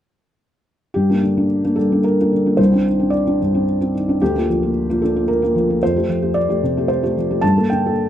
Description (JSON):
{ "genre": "neoclassical minimalist piano", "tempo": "112 BPM", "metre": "3/4", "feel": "rubato", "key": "G minor", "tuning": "A4 = 440 Hz", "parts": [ { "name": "felt-muted upright piano", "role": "solo", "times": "0.9-8.1 s", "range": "C2 to A5", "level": "-15 LUFS", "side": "equal", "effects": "none" } ], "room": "wet small room reverb, RT60 0.5 s", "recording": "rough home demo mix", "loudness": "-15 LUFS", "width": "side -10 dB against mid", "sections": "0.9-8.1 A section", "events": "none", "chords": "0.9 Gm; 2.6 Cmadd9; 4.2 Bb/D; 5.8 Fadd9; 7.4 Gmadd9", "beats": "| 0.94 1.50 2.04 | 2.58 3.12 3.67 | 4.21 4.74 5.28 | 5.81 6.35 6.88 | 7.42 7.95" }